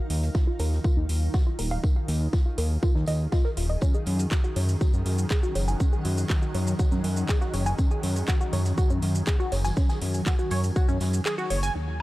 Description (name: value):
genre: melodic techno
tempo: 121 BPM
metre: 4/4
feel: straight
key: unclear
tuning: A4 = 440 Hz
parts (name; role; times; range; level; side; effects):
- tight sequenced synth; arpeggios; 0.0-12.0 s; Db4 to Ab5; -32 LUFS; equal; chorus, sidechain pumping, analog delay
- swarming drone; drone; 0.0-12.0 s; Eb3; -37 LUFS; equal; built-in reverb, sidechain pumping
- granular cloud pad; texture; 0.0-12.0 s; Gb3 to Ab5; -38 LUFS; right 1 dB; built-in reverb, sidechain pumping
- fat analog bass; bass; 0.1-12.0 s; Eb1 to Gb2; -25 LUFS; equal; sidechain pumping
- house drum kit; drums; 0.1-12.0 s; handclaps, hi-hat, shaker, woodblock; -36 LUFS; right 1 dB; none
- open jazz drum kit; drums; 0.1-11.6 s; hi-hat, snare drum, tambourine; -46 LUFS; equal; high-pass filter on hats, high-pass filter on snare, high-pass filter on perc, high-pass filter on room
- electronic kick drum; drums; 0.3-10.9 s; none; -23 LUFS; equal; none
- sweeping resonant pad; sustained chords; 11.8-12.0 s; none; barely audible; none; none
room: little or no reverb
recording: dry, gritty hardware recording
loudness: -23 LUFS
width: side -18 dB against mid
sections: 0.0-11.8 A section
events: filter sweep on synth arpeggio sound 0.0-11.8; break 11.3-11.8; band accent 11.3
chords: 0.0 Ebmadd9; 3.8 Gbsus2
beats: 0.35 0.84 1.34 | 1.84 2.33 2.83 3.32 | 3.82 4.32 4.81 5.31 | 5.80 6.30 6.79 7.29 | 7.79 8.28 8.78 9.27 | 9.77 10.27 10.76 11.26 | 11.75